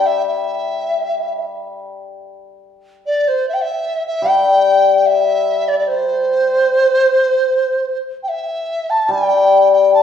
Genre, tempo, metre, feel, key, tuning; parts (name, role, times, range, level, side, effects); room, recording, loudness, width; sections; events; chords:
chinese traditional, Chinese chamber ensemble; 75 BPM; 4/4; straight; A4 = 437 Hz
mellow hollow large dizi; melody; 0.0-10.0 s; C5 to A5; -15 LUFS; right 1 dB
hammered dulcimer; accompaniment; 0.0-10.0 s; G3 to D5; -16 LUFS; left 5 dB
wet recital hall reverb, RT60 1.7 s; heard from further back in the room; -13 LUFS; side -8 dB against mid
0.0-9.1 A section